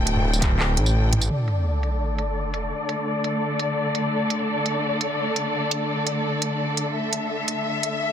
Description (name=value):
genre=half-time drum and bass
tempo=170 BPM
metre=4/4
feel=half-time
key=unclear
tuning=A4 = 440 Hz
part: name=rich symphonic string section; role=sustained chords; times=0.0-8.1 s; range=D3 to G5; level=-24 LUFS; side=left 1 dB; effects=vintage 12-bit sampler grit, sidechain pumping, low-pass filter
part: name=dark detuned saw bass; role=bass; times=0.0-1.3 s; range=D1 to A1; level=-21 LUFS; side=equal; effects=none
part: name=industrial drum kit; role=drums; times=0.1-7.9 s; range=handclaps, hi-hat, tambourine, toms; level=-26 LUFS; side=right 2 dB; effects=low-pass filter on hats, low-pass filter on toms, low-pass filter on perc, low-pass filter on snare, low-pass filter on room
part: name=electronic kick drum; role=drums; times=0.4-0.5 s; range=none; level=-21 LUFS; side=equal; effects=overdrive
part: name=sub drop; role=sound effects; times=1.3-2.7 s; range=none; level=-24 LUFS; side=equal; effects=none
room=light reverb, digital ambience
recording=dense, heavily limited modern master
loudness=-21 LUFS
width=side -9 dB against mid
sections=0.0-1.3 A section; 1.3-8.1 B section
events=drop 0.0-1.3; kick drops out 0.9-1.3; impact 1.3-2.7; filter sweep on string section 1.3-8.1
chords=0.0 D5